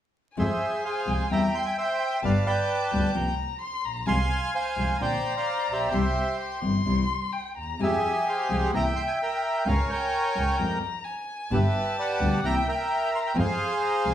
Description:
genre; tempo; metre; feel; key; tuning
tango; 130 BPM; 4/4; rubato; F harmonic minor; A4 = 440 Hz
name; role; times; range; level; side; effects
bandoneon; melody; 0.4-14.1 s; G4 to C6; -26 LUFS; right 1 dB; none
warm violin; second line; 0.4-14.1 s; Gb5 to C6; -32 LUFS; left 3 dB; none
nylon-string guitar; accompaniment; 0.4-14.1 s; B2 to Bb4; -29 LUFS; left 3 dB; none
warm double bass; bass; 0.4-14.1 s; G1 to F2; -29 LUFS; right 1 dB; none
room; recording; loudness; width
wet large studio reverb, RT60 0.8 s; band playing live in one room, vinyl crackle; -24 LUFS; side -10 dB against mid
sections
0.4-14.1 A section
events
none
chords
0.4 Fm; 1.3 C/E; 2.2 G7; 3.2 C7sus4; 4.1 Fm/C; 5.0 Bbadd9; 5.9 C; 7.8 Fmadd9; 8.7 C7; 9.7 Bbm/Db; 10.6 Fm; 11.5 G; 12.4 C7; 13.4 Fm

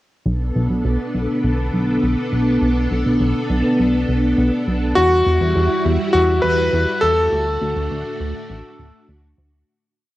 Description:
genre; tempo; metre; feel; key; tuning
synthwave; 102 BPM; 4/4; straight; B minor; A4 = 440 Hz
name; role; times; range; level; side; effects
string machine, full ensemble; sustained chords; 0.3-9.7 s; G3 to A4; -20 LUFS; equal; ensemble chorus, cassette tape
chorused synth bass; bass; 0.3-9.6 s; D1 to E2; -20 LUFS; equal; none
bright electric grand piano; melody; 5.0-9.0 s; F#4 to B4; -17 LUFS; left 1 dB; none
room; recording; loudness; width
wet booth ambience, RT60 0.2 s; home recording on cassette; -16 LUFS; side -16 dB against mid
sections
0.3-9.7 verse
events
fade-out 6.5-9.7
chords
0.3 Bm7; 5.0 Emadd9; 7.3 D

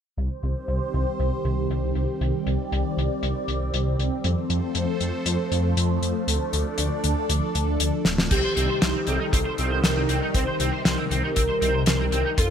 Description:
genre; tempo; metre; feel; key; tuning
synthwave; 118 BPM; 4/4; straight; C dorian; A4 = 440 Hz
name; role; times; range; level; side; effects
phased analog pad; sustained chords; 0.3-12.5 s; C3 to D5; -28 LUFS; equal; phaser, chorus, sidechain pumping
wide detuned saw bass; bass; 0.2-12.5 s; D1 to F2; -25 LUFS; equal; chorus, tube saturation
damped 70s drum kit; drums; 0.2-12.5 s; crash cymbal, hi-hat, snare drum; -26 LUFS; left 2 dB; low-pass filter on hats, low-pass filter on cymbals, low-pass filter on snare, low-pass filter on room
warm velvety synth lead; melody; 8.3-12.5 s; G4 to C5; -28 LUFS; equal; chorus, cassette tape, ping-pong delay
crunchy overdriven guitar; riff; 8.3-12.4 s; C4 to C5; -29 LUFS; right 3 dB; ensemble chorus, ping-pong delay
kick drum; drums; 8.3-12.5 s; none; -23 LUFS; equal; none
room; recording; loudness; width
moderate plate reverb, RT60 2.0 s, small room reverb; bright 1980s-style digital production; -21 LUFS; side -8 dB against mid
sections
0.2-8.3 A section; 8.3-12.5 B section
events
filter sweep on drum 0.2-8.3; filter sweep on detuned saw bass 0.2-8.3; filter sweep on analog synth pad 0.2-8.3; drum fill 8.1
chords
0.2 Cm; 4.2 F; 6.3 Dm; 8.3 Cm

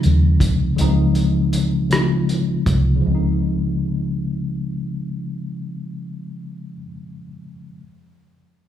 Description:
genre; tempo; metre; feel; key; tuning
slow six-eight R&B; 53 BPM (dotted quarters); 6/8; straight; Db major; A4 = 440 Hz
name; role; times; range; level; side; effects
tine electric piano; accompaniment; 0.0-7.8 s; Db3 to F4; -21 LUFS; left 2 dB; fast stereo tremolo
cloth-damped thuddy drum kit; drums; 0.0-2.8 s; hi-hat, kick drum, rim click; -23 LUFS; equal; none
vintage muted fingered electric bass; bass; 0.1-6.8 s; C2 to Eb2; -20 LUFS; equal; none
room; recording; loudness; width
wet concert hall reverb, RT60 2.2 s; recorded in a church or concert hall; -17 LUFS; side -10 dB against mid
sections
0.0-3.0 A section; 3.0-5.3 B section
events
none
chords
0.0 Dbmaj9

